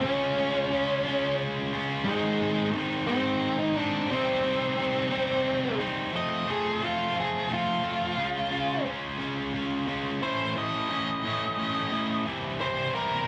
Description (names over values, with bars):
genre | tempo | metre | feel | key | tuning
rock | 59 BPM (dotted quarters) | 6/8 | straight | unclear | A4 = 440 Hz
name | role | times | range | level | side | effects
octave-fuzz lead guitar | melody | 0.0-13.3 s | Ab3 to Eb5 | -31 LUFS | equal | distortion, cassette tape
distorted electric guitar | riff | 0.0-13.3 s | Ab2 to A4 | -31 LUFS | equal | distortion
room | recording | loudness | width
moderate booth ambience, RT60 0.2 s | home recording on cassette | -28 LUFS | mono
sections
0.0-6.1 A section; 6.1-13.3 B section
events
lead electric guitar solo 6.1-13.3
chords
0.0 Db; 2.1 Ab; 4.1 Cm; 6.1 F; 8.2 Db; 10.2 A; 12.3 C